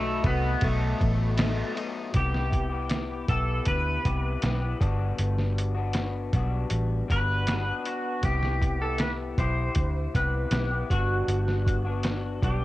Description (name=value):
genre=indie pop, bedroom pop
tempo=79 BPM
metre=4/4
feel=straight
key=C lydian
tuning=A4 = 438 Hz
part: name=clean lap steel guitar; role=melody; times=0.0-12.6 s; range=A3 to C5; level=-31 LUFS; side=equal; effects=lush chorus, cassette tape, tape echo
part: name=electric guitar through a small old amp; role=accompaniment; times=0.0-12.6 s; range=B2 to G4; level=-33 LUFS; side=left 5 dB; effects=analog chorus, vibrato effect, cassette tape
part: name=phased analog pad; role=sustained chords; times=0.0-2.1 s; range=A4 to B5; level=-44 LUFS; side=equal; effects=none
part: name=vintage muted fingered electric bass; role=bass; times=0.0-12.6 s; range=G1 to D2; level=-27 LUFS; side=equal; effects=none
part: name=lo-fi sampler-style drum kit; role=drums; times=0.2-12.6 s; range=hi-hat, kick drum, ride cymbal, snare drum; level=-29 LUFS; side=equal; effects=none
room=little or no reverb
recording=home recording on cassette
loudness=-24 LUFS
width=side -16 dB against mid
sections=0.0-2.1 A section; 2.1-12.6 B section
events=none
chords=0.0 B7; 2.1 Cmaj7; 4.8 Gmaj7; 8.2 Cmaj7; 10.9 Gmaj7